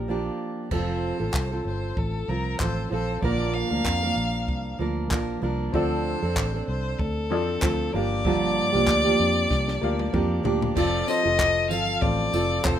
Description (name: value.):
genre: acoustic pop.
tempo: 96 BPM.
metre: 4/4.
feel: swing 55% on 16ths.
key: unclear.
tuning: A4 = 440 Hz.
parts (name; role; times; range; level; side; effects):
rich violin; melody; 0.0-12.8 s; A4 to F5; -27 LUFS; left 2 dB; none.
fingerpicked steel-string acoustic guitar; accompaniment; 0.0-12.8 s; G2 to Bb4; -27 LUFS; right 3 dB; none.
vintage muted fingered electric bass; bass; 0.0-12.8 s; F1 to F2; -29 LUFS; equal; none.
compact cocktail drum kit; drums; 0.7-12.8 s; crash cymbal, handclaps, kick drum, snare drum, tambourine, toms; -28 LUFS; equal; none.
clear upright piano; accompaniment; 5.7-12.8 s; Bb3 to F5; -33 LUFS; left 6 dB; none.
room: light reverb.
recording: minimal, uncompressed stereo recording.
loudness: -22 LUFS.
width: side -10 dB against mid.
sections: 0.7-10.8 A section; 10.8-12.8 B section.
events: drum fill 9.5-10.8.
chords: 0.0 Gm7; 0.7 F; 3.2 Bb; 5.7 Dm7; 7.9 Gm7; 10.8 F.